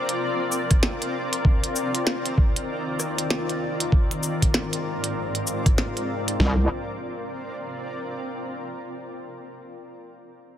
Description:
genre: glitch hop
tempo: 97 BPM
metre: 4/4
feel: swing 61% on 16ths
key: C minor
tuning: A4 = 440 Hz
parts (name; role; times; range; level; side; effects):
- granular cloud pad; texture; 0.0-8.8 s; Ab2 to D5; -27 LUFS; left 1 dB; built-in reverb, sidechain pumping
- glitchy drum kit; drums; 0.1-6.4 s; hi-hat, rim click, shaker, snare drum; -25 LUFS; equal; none
- boom bap sampler-style drum kit; drums; 0.7-6.6 s; kick drum, snare drum, toms; -20 LUFS; equal; none
- wobble bass; bass; 6.4-6.7 s; C2; -19 LUFS; equal; chorus, tube saturation
room: light reverb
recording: none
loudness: -22 LUFS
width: side -10 dB against mid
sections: 0.0-6.4 A section; 6.4-8.9 B section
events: none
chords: 0.0 C9sus4; 1.4 Ebsus2; 3.9 Abadd9; 6.4 C9sus4

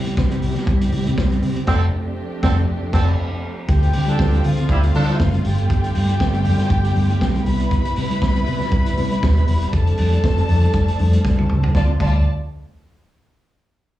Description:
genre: disco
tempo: 119 BPM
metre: 4/4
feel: swing 56% on 16ths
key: D dorian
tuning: A4 = 440 Hz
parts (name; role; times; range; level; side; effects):
- dark studio string section; sustained chords; 0.0-12.0 s; C3 to G4; -27 LUFS; right 2 dB; none
- vintage muted fingered electric bass; bass; 0.0-12.2 s; Eb1 to D3; -18 LUFS; equal; none
- vintage drum kit; drums; 0.1-12.1 s; crash cymbal, hi-hat, kick drum, snare drum, toms; -22 LUFS; equal; none
- congas; percussion; 0.1-12.2 s; none; -28 LUFS; left 4 dB; slapback echo
- warm horn section; stabs; 1.7-5.1 s; D3 to A4; -25 LUFS; right 3 dB; slapback echo
- warm studio string section; second line; 3.7-12.2 s; F4 to B5; -26 LUFS; left 1 dB; slapback echo
room: light reverb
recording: live gig heard through the venue's PA, club reverb, small room ambience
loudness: -16 LUFS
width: side -14 dB against mid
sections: 0.0-3.7 A section; 3.7-11.8 B section; 11.8-13.8 C section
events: band accent 1.7-3.7; drum fill 11.2-11.8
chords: 0.0 Cmaj7; 1.7 F69; 3.7 Dm7; 5.5 G9; 7.5 Cmaj7; 9.7 F69; 11.8 Dm7

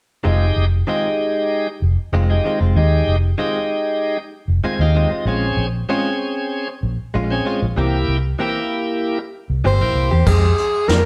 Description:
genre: straight-eighth soul blues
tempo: 96 BPM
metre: 4/4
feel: straight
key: F minor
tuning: A4 = 440 Hz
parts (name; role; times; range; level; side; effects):
- bright tonewheel organ; accompaniment; 0.2-10.1 s; Ab3 to Ab5; -23 LUFS; equal; slow rotary speaker, overdrive
- direct-recorded clean electric guitar; stabs; 0.2-11.1 s; Eb3 to G4; -27 LUFS; equal; warbly pitch drift, slapback echo
- vintage muted fingered electric bass; bass; 0.2-11.1 s; F1 to F2; -20 LUFS; equal; none
- breathy tenor saxophone; melody; 9.7-11.1 s; Ab4 to C5; -21 LUFS; equal; none
- vintage brush drum kit; drums; 10.3-11.0 s; crash cymbal, hi-hat, kick drum, snare drum; -22 LUFS; equal; none
room: moderate stone room reverb, RT60 1.0 s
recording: band playing live in one room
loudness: -19 LUFS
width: mono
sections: 0.3-10.3 A section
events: tonewheel organ fill 4.3-5.3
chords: 0.3 Fm7; 5.3 Bbm7; 7.8 C7; 10.3 Fm9

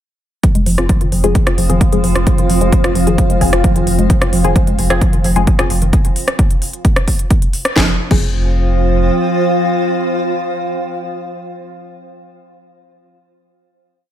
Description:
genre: driving peak-time techno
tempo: 131 BPM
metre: 4/4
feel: straight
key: F minor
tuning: A4 = 442 Hz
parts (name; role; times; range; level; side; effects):
- woody wave-folded pluck; riff; 0.4-8.2 s; Eb3 to F4; -20 LUFS; equal; chorus, cassette tape, sidechain pumping, tape echo
- metallic inharmonic drone; drone; 1.0-11.3 s; F3 to C4; -22 LUFS; equal; chorus, built-in reverb, sidechain pumping
- electronic kick drum; drums; 0.4-8.2 s; none; -14 LUFS; equal; overdrive, studio ambience
- techno drum kit; drums; 0.4-8.2 s; crash cymbal, hi-hat, rim click, snare drum; -20 LUFS; equal; overdrive, sidechain pumping on hats, studio ambience, sidechain pumping on cymbals
- granular cloud pad; texture; 1.6-11.5 s; F4 to F5; -21 LUFS; right 1 dB; built-in reverb, sidechain pumping
- saturated sub bass; bass; 0.6-9.1 s; F1; -17 LUFS; equal; tube saturation, sidechain pumping, low-pass filter
- filtered dub chord stab; stabs; 0.8-11.7 s; F3 to Ab4; -21 LUFS; left 4 dB; phaser, sidechain pumping, tape echo
room: light reverb, digital ambience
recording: none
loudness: -12 LUFS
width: side -11 dB against mid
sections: 0.4-7.8 groove; 7.8-11.4 final chord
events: filter sweep on synth arpeggio sound 0.4-5.9; band accent 7.6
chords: 0.4 Fm

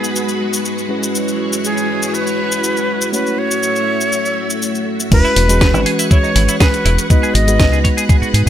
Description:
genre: nu-disco, nu disco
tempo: 121 BPM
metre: 4/4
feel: straight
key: E major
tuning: A4 = 441 Hz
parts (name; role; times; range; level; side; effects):
- breathy bright jazz flute; melody; 0.0-7.8 s; G#4 to D#5; -20 LUFS; equal; tape echo
- mellow tine electric piano; accompaniment; 0.0-8.5 s; E3 to D#5; -20 LUFS; equal; analog chorus
- string machine, full ensemble; sustained chords; 0.0-8.5 s; G#3 to C#6; -22 LUFS; equal; ensemble chorus, sidechain pumping
- house drum kit; drums; 0.0-8.4 s; crash cymbal, hi-hat, shaker, snare drum; -20 LUFS; left 1 dB; none
- deep dub fingered electric bass; bass; 5.1-8.5 s; E1 to G#2; -14 LUFS; equal; none
- electronic kick drum; drums; 5.1-8.2 s; none; -12 LUFS; equal; none
- clean electric guitar; riff; 5.2-8.5 s; D#4 to D#5; -22 LUFS; right 2 dB; analog chorus
room: light reverb, digital ambience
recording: none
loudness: -13 LUFS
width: side -11 dB against mid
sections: 0.0-5.1 A section; 5.1-8.5 B section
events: drop 5.1-8.5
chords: 0.0 G#m7; 0.9 E69; 3.1 F#m7; 5.1 E69; 7.1 G#m7

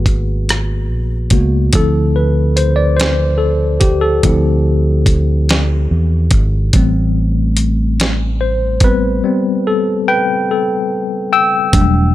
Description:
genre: slow six-eight R&B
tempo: 48 BPM (dotted quarters)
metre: 6/8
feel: straight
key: unclear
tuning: A4 = 436 Hz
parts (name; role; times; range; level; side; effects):
- tine electric piano; accompaniment; 0.0-12.1 s; F3 to E6; -16 LUFS; left 2 dB; medium stereo tremolo
- fingered electric bass; bass; 0.0-12.1 s; E1 to E2; -14 LUFS; equal; none
- dusty soul sampler-style drum kit; drums; 0.1-11.9 s; hi-hat, kick drum, rim click, snare drum; -14 LUFS; equal; none
room: little or no reverb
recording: none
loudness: -12 LUFS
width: side -14 dB against mid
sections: 0.0-11.7 A section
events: tine electric piano solo 0.0-11.7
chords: 0.0 G#m9; 1.7 Dm9; 6.7 Am9

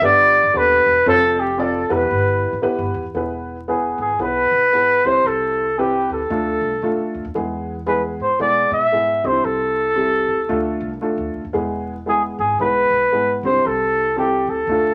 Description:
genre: uptempo 1960s-style soul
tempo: 115 BPM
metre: 4/4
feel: swing 61% on 8ths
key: unclear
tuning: A4 = 441 Hz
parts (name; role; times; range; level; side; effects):
- dark trumpet; melody; 0.0-14.9 s; G4 to E5; -19 LUFS; equal; none
- dark upright piano; accompaniment; 0.0-14.9 s; G3 to D5; -25 LUFS; equal; none
- upright bass; bass; 0.0-14.9 s; D#1 to B2; -33 LUFS; equal; none
room: moderate large studio reverb, RT60 0.9 s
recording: vinyl crackle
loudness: -19 LUFS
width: mono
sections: 0.0-3.2 A section; 3.2-14.9 B section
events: none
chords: 0.0 G; 1.1 F; 1.9 Em; 3.2 E; 5.0 C; 6.3 Dm; 7.3 E; 9.2 C; 10.5 Dm; 11.5 E; 13.4 C

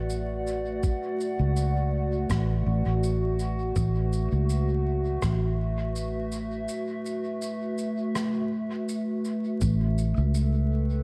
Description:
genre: ambient dub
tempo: 82 BPM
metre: 4/4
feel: swing 53% on 16ths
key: unclear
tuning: A4 = 440 Hz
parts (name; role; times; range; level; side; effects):
- warbly tape-like pad; sustained chords; 0.0-11.0 s; A3 to G5; -32 LUFS; equal; chorus, built-in reverb
- fingered electric bass; bass; 0.0-11.0 s; A1 to C#2; -28 LUFS; equal; none
- shaker and rim click; drums; 0.1-10.5 s; none; -42 LUFS; equal; dub echo
- electronic kick drum; drums; 0.8-9.8 s; none; -31 LUFS; equal; overdrive
room: moderate plate reverb, RT60 2.0 s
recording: dreamy mix soaked in reverb, vinyl crackle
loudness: -27 LUFS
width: mono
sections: 0.0-9.6 A section; 9.6-11.0 B section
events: break 6.7-9.6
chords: 0.0 Bm/A; 9.6 A7

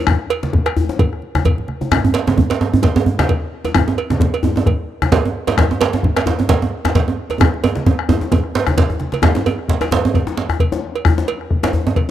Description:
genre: west african traditional, West African drum ensemble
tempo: 131 BPM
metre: 4/4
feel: swing 56% on 16ths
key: none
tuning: none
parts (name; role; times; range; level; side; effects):
- bombo; percussion; 0.1-12.1 s; none; -18 LUFS; left 3 dB; none
- congas; percussion; 0.1-9.2 s; none; -22 LUFS; right 2 dB; none
- djembe; percussion; 0.1-11.9 s; none; -22 LUFS; left 3 dB; none
- cowbell; percussion; 0.3-12.1 s; none; -24 LUFS; right 7 dB; none
- djembe; percussion; 1.9-12.0 s; none; -17 LUFS; right 4 dB; none
room: small room reverb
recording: dry, close 1970s-style studio recording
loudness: -14 LUFS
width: side -11 dB against mid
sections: 0.0-9.2 A section; 9.2-12.1 A section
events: drum fill 1.6-1.9, 7.4-9.2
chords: none

